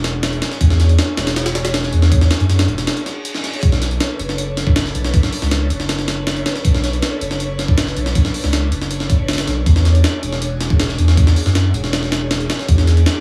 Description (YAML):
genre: drum and bass, jungle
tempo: 159 BPM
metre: 4/4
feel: straight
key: unclear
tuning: A4 = 440 Hz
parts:
  - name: airy breathy pad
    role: sustained chords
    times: 0.0-13.2 s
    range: D4 to D5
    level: -30 LUFS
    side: equal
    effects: chorus, phaser, vintage 12-bit sampler grit
  - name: saturated sub bass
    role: bass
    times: 0.0-13.0 s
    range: E1 to F#2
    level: -19 LUFS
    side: equal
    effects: tube saturation
  - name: breakbeat sampler-style drum kit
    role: drums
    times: 0.0-13.2 s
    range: hi-hat, kick drum, snare drum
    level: -20 LUFS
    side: equal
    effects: none
  - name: reverse cymbal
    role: sound effects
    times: 3.0-3.6 s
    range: none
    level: -33 LUFS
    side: equal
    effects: none
room: digital ambience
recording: vinyl crackle, small room ambience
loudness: -17 LUFS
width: mono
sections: 0.0-13.2 A section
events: break 2.9-3.6; reverse cymbal 3.0-3.6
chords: 0.0 E13; 3.6 Bm9; 9.7 E13